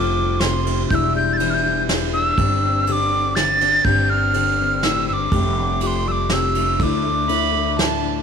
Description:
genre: acoustic folk duo or small band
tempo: 122 BPM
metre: 3/4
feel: straight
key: unclear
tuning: A4 = 441 Hz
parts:
  - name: breathy mellow mid whistle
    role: melody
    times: 0.0-7.8 s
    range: C6 to A6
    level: -20 LUFS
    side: right 1 dB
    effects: none
  - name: fingerpicked plugged-in steel-string acoustic guitar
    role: accompaniment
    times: 0.0-8.2 s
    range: D2 to G4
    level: -23 LUFS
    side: left 8 dB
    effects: none
  - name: upright bass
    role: bass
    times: 0.0-8.2 s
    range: E1 to D2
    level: -24 LUFS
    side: right 2 dB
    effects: none
  - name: soft brush drum kit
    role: drums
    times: 0.4-7.9 s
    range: kick drum, ride cymbal, snare drum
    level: -24 LUFS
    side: right 3 dB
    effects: none
  - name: dark violin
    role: second line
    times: 7.3-8.2 s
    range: A5 to B5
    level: -23 LUFS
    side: right 14 dB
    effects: none
room: light reverb, small room ambience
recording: 1960s-style stereo with parts hard left and right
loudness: -16 LUFS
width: side -6 dB against mid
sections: 0.0-8.2 A section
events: none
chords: 0.0 Fadd9; 0.9 Em7; 2.4 Gsus4; 5.3 Fadd9; 6.8 Dsus2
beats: 0.42 | 0.91 1.40 1.89 | 2.38 2.87 3.36 | 3.85 4.35 4.84 | 5.33 5.82 6.31 | 6.81 7.30 7.79

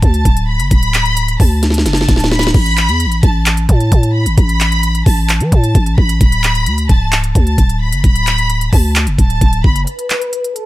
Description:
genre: hip hop, trap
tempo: 131 BPM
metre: 4/4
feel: half-time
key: unclear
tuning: A4 = 441 Hz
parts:
  - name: warm studio violin section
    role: melody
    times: 0.0-10.7 s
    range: A4 to B6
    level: -19 LUFS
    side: equal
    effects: low-pass filter
  - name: growling 808-style bass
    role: bass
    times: 0.0-9.9 s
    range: C#1 to E3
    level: -14 LUFS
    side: equal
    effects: none
  - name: trap drum kit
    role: drums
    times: 0.0-10.7 s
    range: crash cymbal, handclaps, hi-hat, kick drum, snare drum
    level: -12 LUFS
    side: equal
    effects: none
room: little or no reverb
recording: none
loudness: -10 LUFS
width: side -16 dB against mid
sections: 0.0-9.9 A section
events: drum fill 1.6-2.5; break 9.9-10.7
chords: 0.0 D; 2.5 A5; 6.2 Dmaj7(no3); 9.9 Asus2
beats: 0.25 | 0.71 1.17 1.63 2.09 | 2.54 3.00 3.46 3.92 | 4.38 4.83 5.29 5.75 | 6.21 6.67 7.12 7.58 | 8.04 8.50 8.96 9.41 | 9.87 10.33

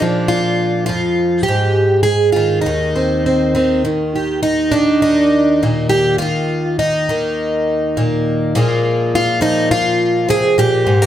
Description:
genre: folk, solo fingerstyle acoustic guitar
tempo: 102 BPM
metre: 4/4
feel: rubato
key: Eb major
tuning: A4 = 440 Hz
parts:
  - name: picked plugged-in twelve-string acoustic guitar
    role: solo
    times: 0.0-11.1 s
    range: Eb2 to Ab4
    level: -13 LUFS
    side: equal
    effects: none
room: wet small room reverb, RT60 0.5 s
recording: heard from further back in the room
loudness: -13 LUFS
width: side -11 dB against mid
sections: 0.0-3.9 A section; 3.9-11.1 A section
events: none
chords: 0.0 Bb7; 1.5 Ab5; 2.6 Cm/Eb; 3.9 Eb5; 8.5 Bb5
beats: 0.31 0.89 | 1.47 2.06 2.65 3.25 | 3.85 4.45 5.04 5.63 | 6.21 6.79 7.38 7.97 | 8.55 9.13 9.71 10.30 | 10.89

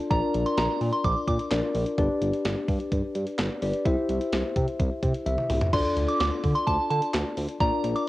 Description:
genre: synth-pop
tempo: 128 BPM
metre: 4/4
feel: straight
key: D minor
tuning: A4 = 439 Hz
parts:
  - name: bell-like tine electric piano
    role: accompaniment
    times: 0.0-8.1 s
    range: D4 to E5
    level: -28 LUFS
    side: left 2 dB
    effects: lush chorus, cassette tape
  - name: soft synth bell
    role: second line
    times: 0.1-1.4, 5.7-8.0 s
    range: A5 to D6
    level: -28 LUFS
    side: right 2 dB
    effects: chorus, cassette tape, tape echo
  - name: smooth synth bass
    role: bass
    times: 0.1-7.9 s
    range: G1 to D3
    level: -28 LUFS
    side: equal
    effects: none
  - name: clean 12-bit digital drum machine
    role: drums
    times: 0.1-8.1 s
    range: crash cymbal, handclaps, hi-hat, kick drum, snare drum, toms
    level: -29 LUFS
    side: equal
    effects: cassette tape
room: light reverb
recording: home recording on cassette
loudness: -23 LUFS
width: side -17 dB against mid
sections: 0.0-5.7 A section; 5.7-8.1 A section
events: tine electric piano fill 5.0-5.7; drum fill 5.3-5.7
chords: 0.1 Bb; 2.0 G; 3.9 C; 5.7 Dm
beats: | 0.10 0.57 1.04 1.51 | 1.98 2.45 2.92 3.39 | 3.85 4.32 4.79 5.26 | 5.73 6.20 6.67 7.14 | 7.61 8.07

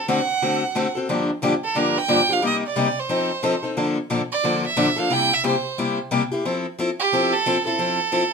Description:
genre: jazz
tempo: 179 BPM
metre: 4/4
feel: swing 60% on 8ths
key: F major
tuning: A4 = 444 Hz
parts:
  - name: clear violin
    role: melody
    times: 0.0-8.3 s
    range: G4 to G5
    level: -22 LUFS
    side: right 5 dB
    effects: none
  - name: picked steel-string acoustic guitar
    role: accompaniment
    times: 0.1-8.2 s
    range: G2 to A4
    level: -21 LUFS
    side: left 2 dB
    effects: none
room: moderate studio reverb, RT60 0.6 s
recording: minimal, uncompressed stereo recording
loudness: -19 LUFS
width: side -5 dB against mid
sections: 0.0-8.3 A section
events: none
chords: 0.0 D7; 1.1 Gm7; 2.4 Cm7; 3.1 F7; 3.8 Bbmaj7; 5.1 C7; 6.4 Fmaj7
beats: 0.09 0.42 0.76 | 1.09 1.42 1.76 2.09 | 2.43 2.76 3.10 3.43 | 3.77 4.10 4.43 4.77 | 5.11 5.44 5.77 6.11 | 6.44 6.78 7.11 7.45 | 7.78 8.12

